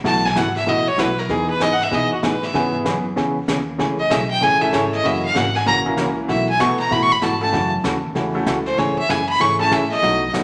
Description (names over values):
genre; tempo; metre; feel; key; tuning
country, western swing; 192 BPM; 4/4; swing 63% on 8ths; unclear; A4 = 442 Hz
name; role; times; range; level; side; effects
hollow-body jazz guitar; accompaniment; 0.0-10.4 s; B2 to G#4; -24 LUFS; equal; none
upright bass; bass; 0.0-10.4 s; F#1 to B2; -31 LUFS; equal; none
jazz brush drum kit; drums; 0.0-10.4 s; brushed snare drum, hi-hat, snare drum; -31 LUFS; equal; none
bright fiddle; second line; 0.1-10.3 s; F#4 to C#6; -21 LUFS; equal; none
bright upright piano; accompaniment; 2.5-10.0 s; A3 to B4; -28 LUFS; equal; none
room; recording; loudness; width
wet large studio reverb, RT60 1.2 s; none; -19 LUFS; mono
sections
0.0-10.4 A section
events
fiddle solo 0.0-10.4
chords
0.0 B7sus4; 1.3 Emaj7; 2.5 C#m7; 3.8 Amaj7; 5.0 F#7; 6.3 B7sus4; 7.5 F#m7; 8.8 Amaj7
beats
| 0.04 0.36 0.67 0.98 | 1.29 1.61 1.92 2.23 | 2.54 2.86 3.17 3.48 | 3.79 4.11 4.42 4.73 | 5.04 5.35 5.66 5.98 | 6.29 6.60 6.91 7.22 | 7.53 7.84 8.16 8.47 | 8.78 9.09 9.40 9.71 | 10.02 10.34